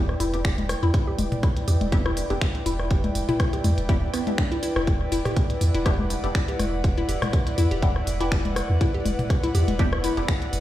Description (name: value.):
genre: minimal techno.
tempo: 122 BPM.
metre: 4/4.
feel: swing 55% on 16ths.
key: E minor.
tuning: A4 = 440 Hz.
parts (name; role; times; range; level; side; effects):
filtered dub chord stab; stabs; 0.0-10.2 s; B3 to G4; -32 LUFS; left 1 dB; phaser, lush chorus, digital delay.
punchy sub bass; bass; 0.0-10.6 s; E1 to E2; -25 LUFS; equal; tube saturation, sidechain pumping.
airy breathy pad; texture; 0.0-10.6 s; E4 to G5; -30 LUFS; equal; chorus, sidechain pumping.
booming analog drum machine; percussion; 0.1-10.4 s; congas, rim click, toms; -30 LUFS; left 2 dB; digital delay.
hollow square pluck; riff; 0.2-10.2 s; B3 to G4; -30 LUFS; left 2 dB; chorus, sidechain pumping, ping-pong delay.
minimal click drum kit; drums; 0.2-10.6 s; finger snaps, hi-hat; -34 LUFS; right 1 dB; none.
electronic kick drum; drums; 0.4-10.4 s; none; -24 LUFS; equal; none.
room: light reverb, digital ambience.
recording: played on a big sound system in a bare room, stone room reverb.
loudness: -21 LUFS.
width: side -14 dB against mid.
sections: 0.0-10.6 A section.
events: none.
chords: 0.0 Em7.